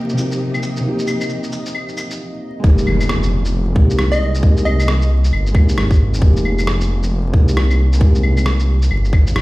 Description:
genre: future garage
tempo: 134 BPM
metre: 4/4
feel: swing 61% on 16ths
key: F minor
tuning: A4 = 440 Hz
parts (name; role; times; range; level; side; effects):
- felt-muted upright piano; accompaniment; 0.0-9.4 s; C3 to G4; -22 LUFS; equal; sidechain pumping, dub echo
- warm studio string section; sustained chords; 0.0-2.2 s; C3 to G4; -25 LUFS; equal; sidechain pumping
- backwards swelling texture; texture; 0.0-2.2 s; Eb4 to Eb5; -36 LUFS; left 1 dB; built-in reverb
- electronic shaker, cabasa, claves and rim click; drums; 0.1-9.4 s; none; -25 LUFS; left 1 dB; studio reverb
- swelling detuned saw bass; bass; 2.6-9.4 s; F1 to C2; -15 LUFS; equal; sidechain pumping
- electronic kick drum; drums; 2.6-9.2 s; none; -11 LUFS; equal; overdrive, studio reverb
- impact; sound effects; 2.6-4.4 s; none; -23 LUFS; equal; none
- plucky unison lead; melody; 4.1-5.1 s; Eb5; -24 LUFS; right 1 dB; dub echo
room: light reverb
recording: played on a big sound system in a bare room, stone room reverb, vinyl crackle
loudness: -13 LUFS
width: side -20 dB against mid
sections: 0.0-2.6 A section; 2.6-9.4 B section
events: stop 2.2-2.6; impact 2.6-4.4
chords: 0.0 Cm7; 2.6 Fm11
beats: 0.40 | 0.85 1.30 1.75 2.19 | 2.64 3.09 3.54 3.98 | 4.43 4.88 5.33 5.78 | 6.22 6.67 7.12 7.57 | 8.01 8.46 8.91 9.36

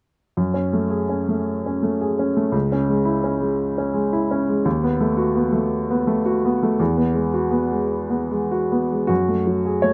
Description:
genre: neoclassical minimalist piano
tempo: 49-58 BPM (dotted quarters)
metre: 6/8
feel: rubato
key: F# dorian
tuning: A4 = 440 Hz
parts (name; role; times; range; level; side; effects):
- warm grand piano; solo; 0.4-9.9 s; C#2 to C#5; -21 LUFS; equal; none
room: light reverb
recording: recorded outdoors, with no room sound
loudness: -21 LUFS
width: mono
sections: 0.4-9.1 A section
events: none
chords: 0.4 F#madd9; 2.5 C#m; 4.7 B7/D#; 6.8 Eadd9; 9.1 F#madd9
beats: | 0.36 1.47 | 2.54 3.60 | 4.65 5.71 | 6.80 7.91 | 9.10

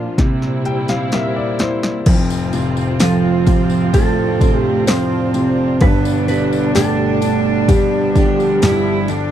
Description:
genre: pop ballad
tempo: 64 BPM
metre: 4/4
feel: straight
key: F lydian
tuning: A4 = 441 Hz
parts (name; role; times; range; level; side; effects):
- clear grand piano; accompaniment; 0.0-9.3 s; F1 to G5; -20 LUFS; left 3 dB; none
- warm studio string section; sustained chords; 0.0-9.3 s; A2 to G4; -24 LUFS; right 2 dB; stereo widening
- fingerpicked steel-string acoustic guitar; arpeggios; 0.0-9.3 s; G2 to A4; -25 LUFS; right 4 dB; none
- deep house drum kit; drums; 0.2-9.3 s; crash cymbal, hi-hat, kick drum, ride cymbal, snare drum; -16 LUFS; equal; none
- clear studio cello section; second line; 2.1-9.3 s; C4 to E4; -25 LUFS; equal; none
- tambourine; percussion; 2.3-9.3 s; none; -33 LUFS; left 18 dB; none
- mellow electric guitar; melody; 3.0-9.1 s; F3 to C5; -16 LUFS; right 3 dB; slapback echo
room: little or no reverb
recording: dry, close 1970s-style studio recording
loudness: -13 LUFS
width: side -10 dB against mid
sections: 0.0-2.1 A section; 2.1-9.3 B section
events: drum fill 0.2-2.1; grand piano fill 0.2-2.1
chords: 0.2 C7; 2.1 F; 5.8 G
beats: 0.19 1.13 | 2.06 3.00 3.94 4.88 | 5.81 6.75 7.69 8.63

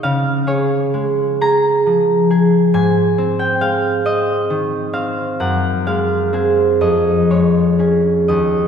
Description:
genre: classical, solo harp piece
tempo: 38-47 BPM (dotted quarters)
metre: 6/8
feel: rubato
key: unclear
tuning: A4 = 440 Hz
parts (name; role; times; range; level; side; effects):
- concert harp; solo; 0.0-8.7 s; Eb2 to Bb5; -13 LUFS; equal; none
room: wet concert hall reverb, RT60 2.2 s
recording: heard from further back in the room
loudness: -13 LUFS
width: side -7 dB against mid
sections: 0.0-8.7 A section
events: none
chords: 0.0 Db; 2.7 Ab; 5.4 Ab7/Gb; 6.8 Db/F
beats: | 0.02 1.40 | 2.75 4.06 | 5.40 6.81 | 8.29

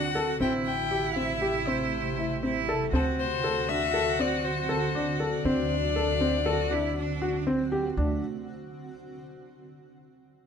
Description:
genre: contemporary instrumental, chamber music in an uneven meter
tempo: 119 BPM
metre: 5/4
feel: straight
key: D mixolydian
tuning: A4 = 440 Hz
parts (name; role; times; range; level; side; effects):
- warm violin; melody; 0.0-7.5 s; A4 to G5; -31 LUFS; left 11 dB; none
- clear cello; second line; 0.0-8.2 s; A3 to F#4; -32 LUFS; right 6 dB; none
- granular cloud pad; sustained chords; 0.0-8.2 s; C3 to G4; -35 LUFS; right 1 dB; built-in reverb
- dark grand piano; arpeggios; 0.0-8.2 s; C4 to A4; -29 LUFS; left 1 dB; none
- upright bass; bass; 0.0-8.2 s; A1 to D2; -34 LUFS; right 1 dB; none
room: light reverb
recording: close, detailed microphones, lossy compression artefacts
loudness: -25 LUFS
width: side -7 dB against mid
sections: 0.0-8.0 A section; 8.0-10.5 B section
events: none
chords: 0.4 Am7; 2.9 D7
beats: | 0.41 0.91 1.42 1.92 2.43 | 2.93 3.44 3.94 4.44 4.95 | 5.45 5.96 6.46 6.96 7.47 | 7.97

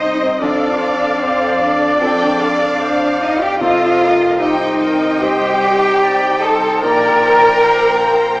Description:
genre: cinematic, emotional film score for orchestra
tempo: 74 BPM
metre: 4/4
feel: rubato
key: C dorian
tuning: A4 = 441 Hz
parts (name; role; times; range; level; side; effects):
- rich studio violin section; melody; 0.0-8.4 s; Eb5 to G5; -22 LUFS; equal; none
- large flute ensemble; second line; 0.0-8.2 s; C5 to Bb5; -20 LUFS; equal; none
- mellow clarinet; second line; 0.0-8.4 s; G4 to Eb5; -22 LUFS; equal; none
- rich studio violin section; second line; 0.0-8.4 s; C5 to Bb5; -23 LUFS; equal; none
- warm grand piano; accompaniment; 0.0-8.4 s; Bb1 to Eb5; -26 LUFS; equal; none
- warm studio viola section; accompaniment; 0.0-8.4 s; Bb3 to Eb5; -23 LUFS; equal; none
- mellow French horn section; sustained chords; 0.0-8.4 s; C4 to Bb4; -19 LUFS; left 1 dB; none
- concert harp; arpeggios; 0.0-8.4 s; Bb2 to F5; -24 LUFS; left 1 dB; none
- rich studio cello section; bass; 0.0-8.4 s; C4 to Bb4; -18 LUFS; equal; none
- rich studio double bass section; bass; 0.0-8.4 s; Bb1 to F2; -32 LUFS; equal; none
room: wet scoring stage reverb, RT60 1.9 s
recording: small speaker sound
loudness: -11 LUFS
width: side -23 dB against mid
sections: 0.0-8.4 A section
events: none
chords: 0.4 F; 3.6 Cmadd9; 6.8 Bbadd9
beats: | 0.40 1.21 2.00 2.81 | 3.60 4.39 5.21 6.02 | 6.82 7.63

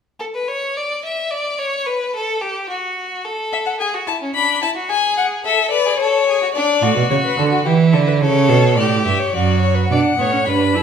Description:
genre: classical, baroque-style fugue for string quartet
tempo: 108 BPM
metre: 3/4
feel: straight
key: D major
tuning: A4 = 440 Hz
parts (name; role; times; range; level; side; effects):
- bright violin; second line; 0.2-10.8 s; C#4 to E5; -21 LUFS; left 1 dB; none
- rich violin; melody; 3.5-10.8 s; F#4 to B5; -18 LUFS; left 8 dB; none
- rich cello; bass; 6.8-10.8 s; F#2 to E3; -15 LUFS; right 5 dB; none
- rich viola; accompaniment; 9.9-10.8 s; B3 to E4; -18 LUFS; right 5 dB; none
room: moderate recital hall reverb, RT60 1.4 s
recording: minimal, uncompressed stereo recording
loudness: -15 LUFS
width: side -7 dB against mid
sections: 0.0-9.9 A section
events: none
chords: 0.0 N.C.; 4.4 Bm/D; 4.9 E/G#; 6.0 A; 6.5 D; 7.7 E7(no3); 8.2 A; 9.3 D/F#; 9.9 Bm7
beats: 0.48 1.04 | 1.59 2.15 2.70 | 3.25 3.80 4.35 | 4.90 5.45 6.00 | 6.55 7.11 7.66 | 8.21 8.78 9.34 | 9.90 10.46

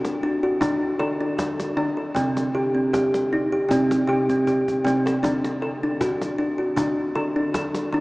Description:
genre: world meditative, meditative tuned percussion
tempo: 78 BPM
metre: 4/4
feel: straight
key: unclear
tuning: A4 = 444 Hz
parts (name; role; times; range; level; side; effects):
- kalimba; arpeggios; 0.0-8.0 s; C3 to A4; -21 LUFS; equal; diffuse ambient delay
- cajon; percussion; 0.0-7.9 s; none; -33 LUFS; equal; none
room: wet cathedral reverb, RT60 6.0 s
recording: in a vast, echoing space, small speaker sound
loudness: -20 LUFS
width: side -22 dB against mid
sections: 0.0-8.0 A section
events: drum fill 4.3-5.2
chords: 0.0 D; 2.2 C5; 5.2 D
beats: 0.62 1.39 | 2.15 2.92 3.69 4.46 | 5.23 6.00 6.77 7.54

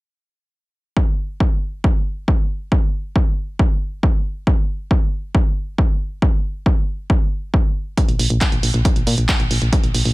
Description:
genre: uplifting trance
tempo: 137 BPM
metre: 4/4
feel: straight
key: unclear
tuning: A4 = 440 Hz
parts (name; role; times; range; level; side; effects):
- electronic kick drum; drums; 1.0-9.8 s; none; -17 LUFS; equal; none
- punchy analog drum machine; drums; 8.0-10.1 s; handclaps, hi-hat; -22 LUFS; right 2 dB; none
- solid FM bass; bass; 8.1-10.1 s; Bb1 to Bb2; -18 LUFS; equal; sidechain pumping
room: digital ambience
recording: none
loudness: -16 LUFS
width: side -21 dB against mid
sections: 1.0-10.1 A section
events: none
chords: none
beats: | 0.97 1.41 1.84 2.28 | 2.72 3.16 3.60 4.03 | 4.47 4.91 5.35 5.78 | 6.22 6.66 7.10 7.54 | 7.97 8.41 8.85 9.29 | 9.73

